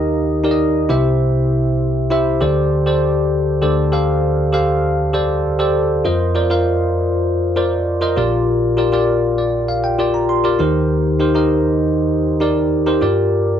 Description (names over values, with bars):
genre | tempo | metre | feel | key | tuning
pop | 99 BPM | 4/4 | straight | unclear | A4 = 440 Hz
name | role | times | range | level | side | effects
bell-like tine electric piano | solo | 0.0-13.6 s | Bb1 to C6 | -14 LUFS | equal | lush chorus
room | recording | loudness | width
little or no reverb | dry, close 1970s-style studio recording | -14 LUFS | side -9 dB against mid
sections
0.0-3.6 A section; 3.6-6.0 B section; 6.0-13.6 C section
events
tine electric piano fill 9.1-10.9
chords
0.0 Eb; 0.9 C; 2.4 D7sus4; 6.0 F7sus4; 8.2 Bb6; 10.6 Eb6; 13.0 Gm7